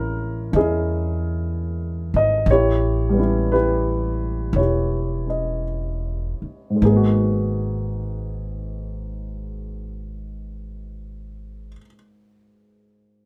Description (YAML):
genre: jazz ballad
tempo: 50-64 BPM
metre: 4/4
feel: swing 66% on 8ths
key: G# minor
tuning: A4 = 443 Hz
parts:
  - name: dark baby grand piano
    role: accompaniment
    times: 0.0-13.3 s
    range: G#2 to D#5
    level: -24 LUFS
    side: equal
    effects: none
  - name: upright bass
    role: bass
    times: 0.0-11.7 s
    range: E1 to E2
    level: -26 LUFS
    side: equal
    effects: none
room: moderate club reverb, RT60 0.7 s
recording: none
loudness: -22 LUFS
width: mono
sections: 0.0-6.8 A section; 6.8-11.5 B section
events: slowing down 0.0-6.8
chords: 0.0 A#m7b5; 2.5 A9; 6.8 G#m9